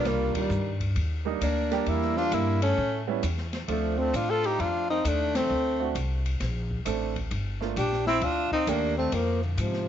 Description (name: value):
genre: jazz, small-group swing and bop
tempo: 132 BPM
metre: 4/4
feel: swing 66% on 8ths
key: unclear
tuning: A4 = 440 Hz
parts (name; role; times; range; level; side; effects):
- breathy tenor saxophone; melody; 0.0-9.9 s; D3 to A4; -27 LUFS; left 4 dB; none
- breathy baritone saxophone; second line; 0.0-9.9 s; Bb2 to F4; -32 LUFS; right 9 dB; none
- warm concert grand piano; accompaniment; 0.0-8.9 s; G3 to A4; -32 LUFS; right 11 dB; none
- upright bass; bass; 0.0-9.9 s; G1 to A2; -29 LUFS; left 1 dB; none
- open jazz drum kit; drums; 0.0-9.9 s; hi-hat, kick drum, ride cymbal, snare drum; -37 LUFS; left 2 dB; none
room: moderate spring reverb, RT60 1.3 s, small room ambience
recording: 1960s-style stereo, nothing above 7.6 kHz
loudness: -24 LUFS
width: side -10 dB against mid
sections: 0.0-9.9 A section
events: band accent 0.3, 5.3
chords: 0.0 Cm7; 1.9 Em7b5; 2.8 A7; 3.7 Dm7; 5.5 D7(no3); 7.3 Gm; 9.1 Fm